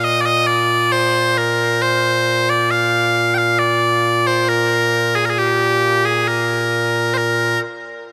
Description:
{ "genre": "scottish traditional, Scottish pipe music", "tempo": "67 BPM", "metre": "3/4", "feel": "straight", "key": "Bb mixolydian", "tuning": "A4 = 440 Hz", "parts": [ { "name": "loud bright bagpipes", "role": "solo", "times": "0.0-7.6 s", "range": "Bb2 to G5", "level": "-17 LUFS", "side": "equal", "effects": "none" } ], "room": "moderate huge ambient reverb, RT60 4.0 s", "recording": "none", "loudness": "-16 LUFS", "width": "mono", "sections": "0.0-7.2 A section", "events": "none", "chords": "none" }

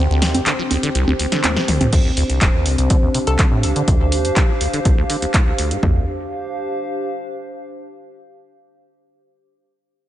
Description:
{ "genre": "acid house", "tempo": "123 BPM", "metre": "4/4", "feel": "straight", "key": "D phrygian", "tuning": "A4 = 440 Hz", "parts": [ { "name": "dark analog pad", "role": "sustained chords", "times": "0.0-5.8 s", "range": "C4 to C5", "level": "-26 LUFS", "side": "left 2 dB", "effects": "chorus, sidechain pumping" }, { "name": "liquid acid bass", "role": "riff", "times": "0.0-6.1 s", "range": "D1 to F3", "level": "-20 LUFS", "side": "equal", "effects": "phaser, tube saturation, sidechain pumping" }, { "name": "warbly tape-like pad", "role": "texture", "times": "0.0-7.7 s", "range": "D4 to G5", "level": "-25 LUFS", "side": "right 1 dB", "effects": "chorus, built-in reverb, sidechain pumping" }, { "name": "punchy analog drum machine", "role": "drums", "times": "0.2-5.8 s", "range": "congas, crash cymbal, handclaps, hi-hat, snare drum, toms", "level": "-20 LUFS", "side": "equal", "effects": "studio reverb" }, { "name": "punchy analog drum machine", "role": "drums", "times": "1.9-5.9 s", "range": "kick drum, toms", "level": "-16 LUFS", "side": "equal", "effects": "studio reverb" }, { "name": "hollow square pluck", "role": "melody", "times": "3.3-3.4 s", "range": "A4", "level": "-28 LUFS", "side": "left 4 dB", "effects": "chorus, tape echo" } ], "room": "light reverb", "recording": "nothing above 10.3 kHz", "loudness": "-15 LUFS", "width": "side -13 dB against mid", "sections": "0.0-1.9 A section; 1.9-5.8 B section; 5.8-7.8 C section", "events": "break 0.0-1.9; drop 0.0-1.9; drum fill 1.4-1.9", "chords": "0.0 N.C.; 1.9 Dm" }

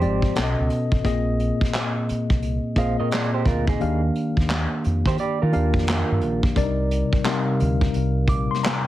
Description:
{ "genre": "R&B, neo-soul", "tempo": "87 BPM", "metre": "4/4", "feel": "swing 64% on 16ths", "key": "unclear", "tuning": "A4 = 440 Hz", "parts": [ { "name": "electric guitar through a small old amp", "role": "second line", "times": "0.0-6.4 s", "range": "Eb4 to F5", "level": "-27 LUFS", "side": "right 6 dB", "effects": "none" }, { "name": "tine electric piano", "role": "accompaniment", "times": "0.0-8.9 s", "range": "Bb2 to D6", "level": "-23 LUFS", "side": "left 2 dB", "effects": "auto-pan" }, { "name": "deep dub fingered electric bass", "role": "bass", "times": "0.0-8.5 s", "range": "Ab1 to Eb3", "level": "-24 LUFS", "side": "equal", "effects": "none" }, { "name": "vintage brush drum kit", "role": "drums", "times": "0.0-8.8 s", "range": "handclaps, hi-hat, kick drum, snare drum", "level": "-24 LUFS", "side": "equal", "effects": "none" } ], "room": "light reverb", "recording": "heavily compressed radio sound, multiband compression", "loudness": "-20 LUFS", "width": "side -14 dB against mid", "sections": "0.0-6.6 A section; 6.6-8.9 B section", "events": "none", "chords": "0.4 B9; 1.0 Bb9sus4; 3.8 Ebmaj9; 6.6 Cm9" }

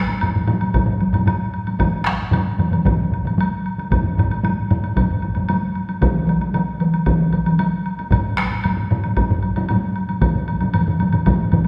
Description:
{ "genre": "japanese traditional, taiko drum ensemble", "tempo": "114 BPM", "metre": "4/4", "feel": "straight", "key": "none", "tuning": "none", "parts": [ { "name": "taiko ensemble", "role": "percussion", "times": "0.1-11.6 s", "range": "none", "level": "-25 LUFS", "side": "equal", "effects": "none" }, { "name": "woodblock", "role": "percussion", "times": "0.1-11.7 s", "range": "none", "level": "-31 LUFS", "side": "equal", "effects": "none" }, { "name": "taiko ensemble", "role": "percussion", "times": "0.2-11.6 s", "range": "none", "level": "-24 LUFS", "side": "equal", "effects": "none" }, { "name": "solo taiko drums", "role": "percussion", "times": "0.7-11.4 s", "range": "none", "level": "-26 LUFS", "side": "equal", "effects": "none" }, { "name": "taiko ensemble", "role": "percussion", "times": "1.8-11.7 s", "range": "none", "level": "-23 LUFS", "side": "equal", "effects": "none" } ], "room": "wet recital hall reverb, RT60 1.6 s", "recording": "recorded in a church or concert hall", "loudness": "-19 LUFS", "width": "mono", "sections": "0.0-11.7 A section", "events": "none", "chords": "none" }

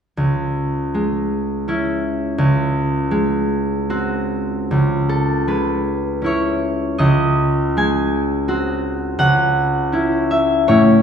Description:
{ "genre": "classical, solo harp piece", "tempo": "80 BPM", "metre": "3/4", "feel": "uneven beats, rubato", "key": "C# minor", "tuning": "A4 = 441 Hz", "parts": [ { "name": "concert harp", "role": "solo", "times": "0.2-11.0 s", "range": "C#2 to G#5", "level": "-16 LUFS", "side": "equal", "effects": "none" } ], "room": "wet recital hall reverb, RT60 1.3 s", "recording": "heard from further back in the room", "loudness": "-16 LUFS", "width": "side -7 dB against mid", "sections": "0.2-4.7 A section; 4.7-11.0 B section", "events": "none", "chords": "0.2 C#m; 2.4 G#7/C#; 4.7 C#m; 7.0 G#7/C#; 9.2 C#m" }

